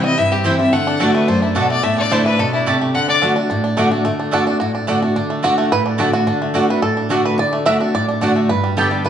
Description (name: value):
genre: bluegrass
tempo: 216 BPM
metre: 4/4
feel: straight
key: D mixolydian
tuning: A4 = 440 Hz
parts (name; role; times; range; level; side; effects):
- bluegrass banjo; melody; 0.0-9.1 s; D3 to E5; -20 LUFS; right 2 dB; none
- clear fiddle; melody; 0.0-3.2 s; E4 to F#5; -19 LUFS; left 4 dB; none
- picked steel-string acoustic guitar; accompaniment; 0.0-9.1 s; F#2 to G4; -18 LUFS; equal; none
- mandolin; stabs; 0.4-8.9 s; A3 to A5; -23 LUFS; right 1 dB; none
room: wet large studio reverb, RT60 1.5 s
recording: band playing live in one room, nothing above 10.6 kHz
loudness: -14 LUFS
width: side -9 dB against mid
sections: 0.0-4.1 A section; 4.1-9.1 B section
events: five-string banjo solo 4.1-9.1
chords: 0.0 C; 0.7 D; 1.8 Asus4; 2.9 D; 8.5 G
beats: 0.17 0.45 | 0.73 1.01 1.28 1.56 | 1.84 2.11 2.39 2.67 | 2.95 3.22 3.50 3.78 | 4.05 4.33 4.61 4.89 | 5.17 5.44 5.72 6.00 | 6.28 6.55 6.83 7.11 | 7.39 7.66 7.94 8.22 | 8.50 8.78 9.05